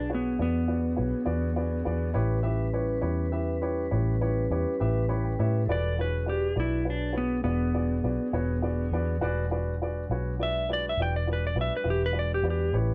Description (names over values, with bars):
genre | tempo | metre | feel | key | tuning
slow blues | 68 BPM (dotted quarters) | 12/8 | straight | E mixolydian | A4 = 440 Hz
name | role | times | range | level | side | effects
clean lap steel guitar | melody | 0.0-12.8 s | B3 to G5 | -32 LUFS | equal | none
mellow tonewheel organ | sustained chords | 0.0-12.9 s | F#3 to B4 | -39 LUFS | equal | slow rotary speaker
vintage muted fingered electric bass | bass | 0.0-12.9 s | E1 to A2 | -31 LUFS | equal | none
dark upright piano | accompaniment | 0.1-12.9 s | E4 to B5 | -35 LUFS | equal | none
room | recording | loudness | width
light reverb | band playing live in one room | -28 LUFS | mono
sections
0.0-12.9 A section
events
electric slide guitar solo 0.0-12.9; upright piano fill 4.8-5.7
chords
0.0 E9; 2.2 A9; 5.7 E9